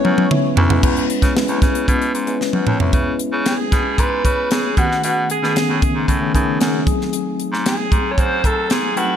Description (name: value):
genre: polished 1980s jazz-funk pop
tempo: 114 BPM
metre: 4/4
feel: straight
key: C# minor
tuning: A4 = 442 Hz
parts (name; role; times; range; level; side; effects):
- breathy alto saxophone; melody; 0.0-9.2 s; F#4 to C#5; -22 LUFS; right 1 dB; none
- mellow tine electric piano; accompaniment; 0.0-9.2 s; C#3 to G#5; -21 LUFS; left 2 dB; medium stereo tremolo, wide subtle chorus
- raspy baritone saxophone; bass; 0.0-9.2 s; C#2 to C#3; -22 LUFS; equal; none
- tight funk drum kit; drums; 0.0-9.1 s; crash cymbal, hi-hat, kick drum, snare drum, toms; -18 LUFS; equal; gated reverb
room: light reverb, studio ambience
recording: bright 1980s-style digital production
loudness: -15 LUFS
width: side -9 dB against mid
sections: 0.8-2.9 A section; 2.9-9.2 B section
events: drum fill 0.0-0.8, 2.4-2.9; tine electric piano fill 0.0-0.8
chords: 0.0 C#m7; 4.8 B13; 6.9 G#7b9